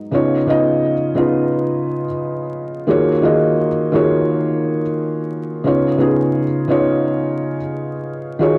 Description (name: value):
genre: hip hop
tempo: 87 BPM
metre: 4/4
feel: swing 56% on 16ths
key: unclear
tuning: A4 = 440 Hz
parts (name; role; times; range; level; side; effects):
- felt-muted upright piano; solo; 0.0-8.6 s; Db3 to Eb5; -18 LUFS; equal; cassette tape, tape echo
room: moderate spring reverb, RT60 2.4 s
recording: home recording on cassette, vinyl crackle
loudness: -18 LUFS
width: mono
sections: 0.1-8.6 A section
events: none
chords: 0.1 Db9; 2.9 Ebm11; 5.6 Db9